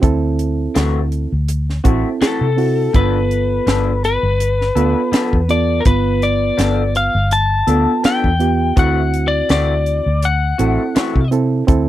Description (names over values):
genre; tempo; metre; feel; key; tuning
straight-eighth soul blues; 82 BPM; 4/4; swing 55% on 16ths; unclear; A4 = 440 Hz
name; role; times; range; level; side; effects
reed electric piano; accompaniment; 0.0-11.9 s; B3 to B4; -20 LUFS; right 6 dB; none
vintage muted fingered electric bass; bass; 0.0-11.9 s; G1 to C3; -18 LUFS; equal; none
tight funk drum kit; drums; 0.0-11.9 s; hi-hat, kick drum, snare drum; -16 LUFS; equal; none
electric guitar through a small old amp; stabs; 0.7-11.2 s; E3 to A4; -22 LUFS; left 7 dB; phaser
lightly driven lead guitar; melody; 2.2-11.3 s; A4 to A5; -18 LUFS; left 4 dB; none
room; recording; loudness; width
little or no reverb; dry, close 1970s-style studio recording; -14 LUFS; side -13 dB against mid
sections
0.0-11.9 A section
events
none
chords
0.0 D9; 2.9 G9; 8.8 D9